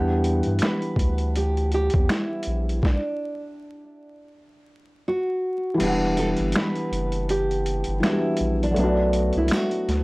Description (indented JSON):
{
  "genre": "lo-fi hip hop",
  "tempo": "81 BPM",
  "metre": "4/4",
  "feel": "swing 58% on 16ths",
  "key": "E minor",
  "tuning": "A4 = 441 Hz",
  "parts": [
    { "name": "nylon-string guitar", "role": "melody", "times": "0.0-10.0 s", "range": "D4 to B4", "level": "-27 LUFS", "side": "right 1 dB", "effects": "none" },
    { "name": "felt-muted upright piano", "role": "accompaniment", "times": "0.0-10.0 s", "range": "E3 to F#5", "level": "-25 LUFS", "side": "left 1 dB", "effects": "plate reverb" },
    { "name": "round analog bass", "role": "bass", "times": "0.0-10.0 s", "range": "E1 to G2", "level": "-25 LUFS", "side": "equal", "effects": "none" },
    { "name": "boom bap sampler-style drum kit", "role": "drums", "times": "0.2-10.0 s", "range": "crash cymbal, finger snaps, hi-hat, kick drum, snare drum", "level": "-25 LUFS", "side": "equal", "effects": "overdrive, vintage 12-bit sampler grit" }
  ],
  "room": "light reverb",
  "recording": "dry, gritty hardware recording, vinyl crackle",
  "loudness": "-21 LUFS",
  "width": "side -23 dB against mid",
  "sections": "0.0-5.8 A section; 5.8-10.0 A section",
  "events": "stop 2.8-5.8; kick muted 5.8-10.0",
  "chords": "0.0 Em7; 2.8 N.C.; 5.8 Em7; 8.8 Bm7"
}